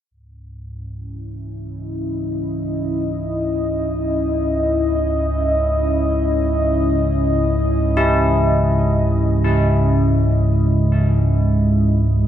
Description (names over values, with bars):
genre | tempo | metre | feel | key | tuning
dark ambient drone | free time | none | none | C# minor | A4 = 440 Hz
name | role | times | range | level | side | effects
deep dark ambient pad | sustained chords | 1.6-12.3 s | C#4 to D#5 | -21 LUFS | equal | chorus, built-in reverb
deep rumbling drone | drone | 0.4-12.3 s | C#2 to G#2 | -18 LUFS | equal | built-in reverb
carillon bells | arpeggios | 8.0-12.3 s | E4 | -22 LUFS | left 2 dB | tape echo
room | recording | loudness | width
wet spring reverb, RT60 2.4 s | echo-heavy mix | -16 LUFS | side -10 dB against mid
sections
0.1-12.3 A section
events
fade-out on ambient pad 0.1-12.3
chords
0.1 C#madd9